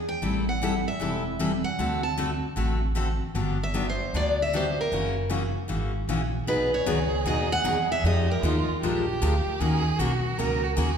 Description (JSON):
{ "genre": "acoustic string swing (jazz manouche)", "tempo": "153 BPM", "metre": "4/4", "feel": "swing 63% on 8ths", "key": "B major from 6.5 s", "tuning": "A4 = 440 Hz", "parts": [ { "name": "upright bass", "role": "bass", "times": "0.0-11.0 s", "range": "E1 to F2", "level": "-28 LUFS", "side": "equal", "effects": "none" }, { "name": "picked steel-string acoustic guitar", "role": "melody", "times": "0.1-9.4 s", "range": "Bb4 to A5", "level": "-28 LUFS", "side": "right 1 dB", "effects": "none" }, { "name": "picked steel-string acoustic guitar", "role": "accompaniment", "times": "0.2-10.9 s", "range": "B2 to A#4", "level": "-28 LUFS", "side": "left 2 dB", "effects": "none" }, { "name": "warm violin", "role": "second line", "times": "6.5-11.0 s", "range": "F4 to A#4", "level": "-30 LUFS", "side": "right 5 dB", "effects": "none" } ], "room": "wet recital hall reverb, RT60 1.4 s", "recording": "recorded in a church or concert hall", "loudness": "-23 LUFS", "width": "side -7 dB against mid", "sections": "0.0-6.5 A section; 6.5-11.0 B section", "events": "none", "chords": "0.2 Am7; 1.8 D7; 3.3 Gmaj7; 4.9 F#7; 6.5 B6; 8.0 Fm7b5; 8.8 A#7; 9.6 D#m7" }